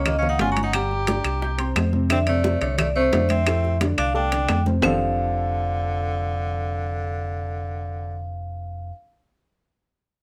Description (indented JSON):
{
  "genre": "Afro-Cuban jazz",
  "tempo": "176 BPM",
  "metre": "4/4",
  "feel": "straight",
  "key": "F major",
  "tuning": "A4 = 440 Hz",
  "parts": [
    { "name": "vibraphone with medium hard mallets", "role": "melody", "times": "0.0-8.9 s", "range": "C5 to Bb5", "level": "-30 LUFS", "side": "equal", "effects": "none" },
    { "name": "bright tenor saxophone", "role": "second line", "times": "0.0-8.3 s", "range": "D3 to G4", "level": "-32 LUFS", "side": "equal", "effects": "none" },
    { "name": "warm baby grand piano", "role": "accompaniment", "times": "0.0-8.9 s", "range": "A2 to G6", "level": "-30 LUFS", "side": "equal", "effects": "none" },
    { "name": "fingered electric bass", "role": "bass", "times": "0.0-8.9 s", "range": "F1 to F2", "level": "-28 LUFS", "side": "equal", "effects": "none" },
    { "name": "bongos", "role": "percussion", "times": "0.1-4.9 s", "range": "none", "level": "-34 LUFS", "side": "equal", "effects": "none" },
    { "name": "claves", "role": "percussion", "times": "0.1-4.9 s", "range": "none", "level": "-30 LUFS", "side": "equal", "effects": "none" },
    { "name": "congas", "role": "percussion", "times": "0.1-4.9 s", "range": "none", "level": "-31 LUFS", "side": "equal", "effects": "none" },
    { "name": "timbales", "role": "percussion", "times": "0.1-4.9 s", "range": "none", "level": "-31 LUFS", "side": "equal", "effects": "none" }
  ],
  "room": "light reverb",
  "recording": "none",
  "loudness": "-23 LUFS",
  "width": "mono",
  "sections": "0.0-4.8 A section; 4.8-7.6 B section",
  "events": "drum fill 3.8-4.8",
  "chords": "0.0 Gb; 0.7 Gm; 1.4 C5; 2.1 F6; 4.8 F69"
}